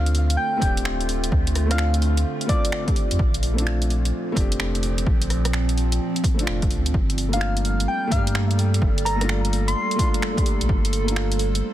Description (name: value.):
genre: future garage.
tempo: 128 BPM.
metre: 4/4.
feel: swing 65% on 16ths.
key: G minor.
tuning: A4 = 440 Hz.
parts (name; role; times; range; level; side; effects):
soft struck synth lead; melody; 0.0-3.0, 7.3-10.1 s; D5 to C6; -28 LUFS; left 1 dB; chorus, tape echo.
felt-muted upright piano; accompaniment; 0.0-11.7 s; A3 to G4; -29 LUFS; left 2 dB; sidechain pumping, tape echo.
warbly tape-like pad; sustained chords; 0.4-11.7 s; Bb2 to C5; -30 LUFS; right 4 dB; chorus, built-in reverb, phaser, sidechain pumping.
warm sub bass; bass; 0.0-11.6 s; D1 to G2; -22 LUFS; equal; tube saturation, sidechain pumping.
deep house drum kit; drums; 0.1-11.6 s; finger snaps, hi-hat, rim click; -29 LUFS; equal; overdrive, soft clipping on snare.
electronic kick drum; drums; 0.6-10.8 s; none; -22 LUFS; equal; overdrive.
room: little or no reverb.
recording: dense, heavily limited modern master, vinyl crackle.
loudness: -19 LUFS.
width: side -13 dB against mid.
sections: 0.0-11.7 A section.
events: none.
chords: 0.0 Dm7; 3.2 Bbmaj7; 6.9 Gm7.